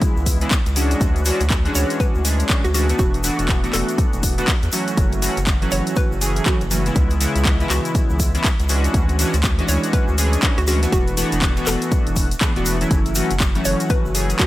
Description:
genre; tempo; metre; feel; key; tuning
deep house; 121 BPM; 4/4; swing 60% on 16ths; F# minor; A4 = 440 Hz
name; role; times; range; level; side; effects
hollow square pluck; melody; 0.0-14.5 s; F#4 to C#5; -28 LUFS; right 1 dB; chorus, tape echo
chorused polysynth; stabs; 0.0-14.5 s; C#3 to G#4; -22 LUFS; equal; sidechain pumping, tape echo
electronic kick drum; drums; 0.0-14.5 s; none; -19 LUFS; equal; overdrive, small room reverb
house drum kit; drums; 0.0-14.5 s; handclaps, hi-hat; -25 LUFS; left 1 dB; overdrive, small room reverb
tube shaker; percussion; 0.0-14.5 s; none; -31 LUFS; left 2 dB; none
round analog bass; bass; 0.2-14.3 s; E1 to E2; -21 LUFS; equal; tube saturation, sidechain pumping
room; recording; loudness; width
digital ambience; none; -16 LUFS; side -16 dB against mid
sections
0.0-14.5 A section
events
none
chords
0.0 C#m7; 1.0 Dmaj9#11; 3.0 E9sus4; 5.0 F#m7; 7.0 C#m7; 8.9 Dmaj9#11; 10.9 E9sus4; 12.9 F#m7

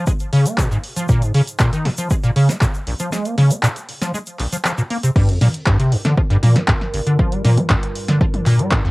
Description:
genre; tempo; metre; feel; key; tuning
acid house; 118 BPM; 4/4; straight; G minor; A4 = 442 Hz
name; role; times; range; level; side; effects
acid bass, square; riff; 0.0-8.9 s; G1 to Bb3; -16 LUFS; equal; ensemble chorus, sidechain pumping, cassette tape
electronic kick drum; drums; 0.1-8.8 s; none; -18 LUFS; equal; overdrive
egg shaker; percussion; 0.1-5.1 s; none; -32 LUFS; equal; none
punchy analog drum machine; drums; 0.2-8.8 s; crash cymbal, handclaps, hi-hat, snare drum, toms; -23 LUFS; equal; overdrive
warbly tape-like pad; sustained chords; 6.0-8.9 s; G2 to Bb4; -29 LUFS; right 1 dB; chorus, built-in reverb, phaser, sidechain pumping, cassette tape
room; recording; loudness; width
wet booth ambience, RT60 0.2 s; home recording on cassette; -15 LUFS; side -22 dB against mid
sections
0.0-5.2 A section; 5.2-8.9 B section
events
break 3.1-5.2; drop 5.2-8.9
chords
0.0 Bbm7; 5.2 Gm7

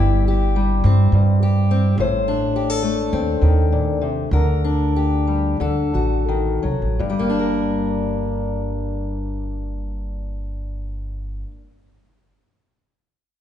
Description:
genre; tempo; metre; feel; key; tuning
folk; 81-106 BPM; 4/4; straight; G minor; A4 = 440 Hz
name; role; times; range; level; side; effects
fingerpicked steel-string acoustic guitar; accompaniment; 0.0-11.7 s; G2 to C5; -22 LUFS; left 3 dB; none
upright bass; bass; 0.0-11.4 s; G1 to G2; -20 LUFS; right 1 dB; none
room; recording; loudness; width
wet recital hall reverb, RT60 1.5 s; recorded in a church or concert hall, nothing above 10.3 kHz; -17 LUFS; side -10 dB against mid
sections
0.0-7.0 A section; 7.0-10.0 B section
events
slowing down 2.0-7.0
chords
0.0 C/G; 2.0 Adim; 4.3 Gm/D; 5.6 D; 7.0 Gm

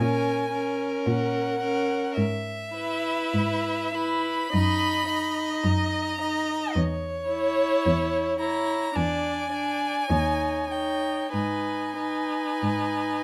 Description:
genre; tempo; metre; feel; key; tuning
classical, slow romantic movement for string quartet; 46-57 BPM; 4/4; rubato; unclear; A4 = 440 Hz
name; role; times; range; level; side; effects
rich violin; melody; 0.0-13.2 s; C#5 to B5; -31 LUFS; equal; none
rich violin; second line; 0.0-13.2 s; A#4 to D#5; -33 LUFS; equal; none
rich viola; accompaniment; 0.0-13.2 s; C#4 to E4; -32 LUFS; equal; none
warm cello; bass; 0.0-13.2 s; D#2 to A#2; -31 LUFS; equal; none
room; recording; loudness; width
light reverb; close, detailed microphones; -26 LUFS; mono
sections
0.0-13.2 A section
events
none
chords
0.0 F#/A#; 2.2 E/G#; 4.5 D#m/F#; 6.8 C#m/E; 9.0 E7; 10.1 D#7; 11.3 G#m

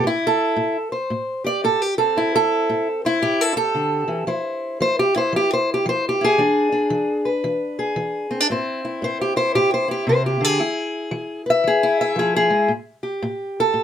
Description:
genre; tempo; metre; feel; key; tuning
acoustic country blues, solo or duo; 114 BPM; 4/4; swing 64% on 8ths; A minor; A4 = 442 Hz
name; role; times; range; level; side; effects
fingerpicked acoustic archtop guitar; solo; 0.0-13.8 s; A2 to E5; -18 LUFS; equal; none
room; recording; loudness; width
light reverb; close, detailed microphones; -18 LUFS; side -9 dB against mid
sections
0.0-12.7 A section; 12.7-13.8 B section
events
steel-string acoustic guitar solo 12.7-13.8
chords
0.0 Am7; 4.3 F5; 6.4 E7; 8.5 Am; 10.6 E; 12.7 A7(no3)

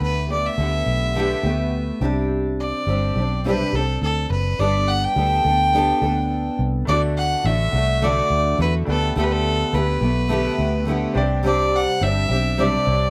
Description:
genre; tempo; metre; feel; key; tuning
acoustic pop; 105 BPM; 4/4; swing 55% on 16ths; G major; A4 = 440 Hz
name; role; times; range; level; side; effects
clear fiddle; melody; 0.0-13.1 s; A4 to G5; -25 LUFS; equal; none
fingerpicked steel-string acoustic guitar; accompaniment; 0.0-13.1 s; C3 to A4; -26 LUFS; equal; double-tracked
vintage muted fingered electric bass; bass; 0.0-13.1 s; F#1 to E2; -25 LUFS; equal; none
bright baby grand piano; accompaniment; 6.9-13.1 s; A3 to D5; -34 LUFS; equal; none
room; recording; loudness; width
moderate studio reverb, RT60 0.5 s; rough home demo mix; -20 LUFS; mono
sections
0.0-6.9 A section; 6.9-13.1 B section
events
none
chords
0.0 Gadd9/D; 2.0 Csus2; 4.6 Gadd9; 6.9 D; 8.9 Gadd9/D; 11.2 Csus2

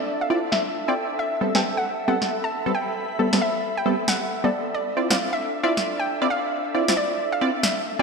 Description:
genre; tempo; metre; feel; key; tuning
UK garage, two-step garage; 135 BPM; 4/4; swing 62% on 16ths; D dorian; A4 = 441 Hz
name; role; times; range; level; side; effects
hollow square pluck; melody; 0.0-8.0 s; D5 to A5; -27 LUFS; equal; chorus, ping-pong delay
ethereal airy pad; sustained chords; 0.0-8.0 s; E5; -32 LUFS; right 2 dB; ensemble chorus, built-in reverb
airy breathy pad; texture; 0.0-8.0 s; D4 to B5; -32 LUFS; left 1 dB; chorus
punchy chord stab; stabs; 0.3-8.0 s; G3 to D5; -25 LUFS; equal; chorus, vintage 12-bit sampler grit
electronic snare drum; drums; 0.5-7.7 s; none; -25 LUFS; equal; low-pass filter on hats, low-pass filter on snare, low-pass filter on cymbals, low-pass filter on room, gated reverb
room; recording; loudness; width
wet lush hall reverb, RT60 2.1 s; bright 1980s-style digital production; -21 LUFS; side -4 dB against mid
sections
0.0-8.0 A section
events
none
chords
0.0 Dm9; 1.2 Am9; 4.7 Dm9

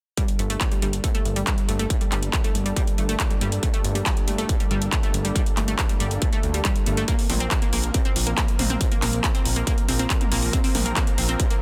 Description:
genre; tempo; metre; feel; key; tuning
uplifting trance; 139 BPM; 4/4; straight; G minor; A4 = 440 Hz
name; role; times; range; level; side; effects
supersaw pad; sustained chords; 0.2-11.6 s; F3 to Bb4; -35 LUFS; equal; sidechain pumping, low-pass filter
unison pluck; arpeggios; 0.2-11.6 s; G3 to C4; -32 LUFS; equal; sidechain pumping, delay
electronic kick drum; drums; 0.2-11.5 s; none; -26 LUFS; equal; distortion
techno drum kit; drums; 0.2-11.6 s; handclaps, hi-hat, toms; -30 LUFS; equal; none
fat analog bass; bass; 0.4-11.4 s; G1 to D2; -28 LUFS; equal; sidechain pumping
room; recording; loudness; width
little or no reverb; dense, heavily limited modern master; -23 LUFS; mono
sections
0.2-11.6 A section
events
filter sweep on supersaw synth 0.2-11.6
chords
0.2 Gmadd9; 7.1 Bbsus2

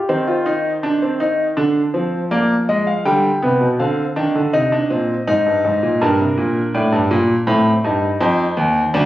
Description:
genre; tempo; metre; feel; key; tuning
classical, baroque-style 3-part fugue for grand piano; 81 BPM; 4/4; straight; C minor; A4 = 440 Hz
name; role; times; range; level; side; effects
clear concert grand piano; solo; 0.0-9.1 s; D2 to G5; -15 LUFS; equal; none
room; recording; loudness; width
moderate stone room reverb, RT60 1.2 s; recorded on a phone in the room, club reverb, compression; -15 LUFS; side -14 dB against mid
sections
0.1-9.1 A section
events
none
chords
0.1 Cm/Eb; 1.6 Dm7b5; 3.1 G; 4.5 Cm; 6.0 Gm; 7.5 Am7b5

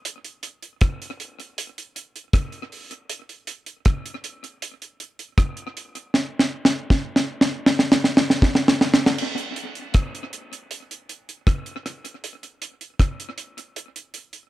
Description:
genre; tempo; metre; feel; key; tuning
reggae; 79 BPM; 4/4; straight; none; none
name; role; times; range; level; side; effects
deep reggae drum kit; drums; 0.1-14.5 s; crash cymbal, hi-hat, kick drum, rim click, snare drum; -19 LUFS; equal; tape echo
room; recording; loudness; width
light reverb; none; -19 LUFS; side -16 dB against mid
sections
0.0-9.2 A section; 9.2-14.5 B section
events
drum fill 6.1-9.2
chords
none

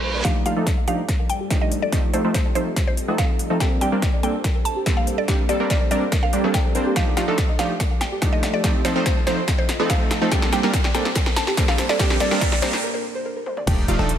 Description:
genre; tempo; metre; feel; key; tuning
future bass; 143 BPM; 4/4; half-time; Bb major; A4 = 440 Hz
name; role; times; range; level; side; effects
mallet-like synth pluck; melody; 0.0-12.8 s; C5 to A5; -27 LUFS; equal; chorus, sidechain pumping, digital delay
ethereal airy pad; sustained chords; 0.0-14.2 s; G3 to Eb5; -32 LUFS; left 1 dB; ensemble chorus, built-in reverb, sidechain pumping
soft round pluck; arpeggios; 0.0-14.0 s; G4 to Eb6; -32 LUFS; right 2 dB; chorus, sidechain pumping, digital delay
warm 808-style bass; bass; 0.0-0.2, 13.7-14.2 s; Eb1 to Bb1; -24 LUFS; equal; sidechain pumping
reverse cymbal, riser and sub drop; sound effects; 0.0-0.2, 9.4-14.2 s; none; -31 LUFS; right 2 dB; none
supersaw stab; riff; 0.2-14.1 s; F3 to C5; -24 LUFS; right 1 dB; sidechain pumping, low-pass filter
big-room dance drum kit; drums; 0.2-14.2 s; crash cymbal, hi-hat, snare drum, toms; -27 LUFS; equal; overdrive, high-pass filter on snare, studio reverb, high-pass filter on hats, high-pass filter on toms, high-pass filter on cymbals
electronic kick drum; drums; 0.2-13.8 s; none; -21 LUFS; equal; overdrive, studio reverb
wide unison pluck; arpeggios; 13.7-14.1 s; F5 to A5; -32 LUFS; left 1 dB; cassette tape, sidechain pumping
room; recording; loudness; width
light reverb; none; -18 LUFS; side -10 dB against mid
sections
0.2-13.7 A section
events
reverse cymbal 0.0; build-up 0.2-13.7; drum fill 0.2-12.8, 13.5; filter sweep on supersaw synth 0.2-13.7; filter sweep on synth arpeggio sound 0.2-13.7; break 12.8-13.7; impact 13.7-14.2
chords
0.2 Ebmaj9#11; 1.9 F7; 3.6 Bbmaj13; 7.0 Ebmaj9#11; 8.6 F7; 10.3 Bbmaj13; 13.7 Ebmaj9#11

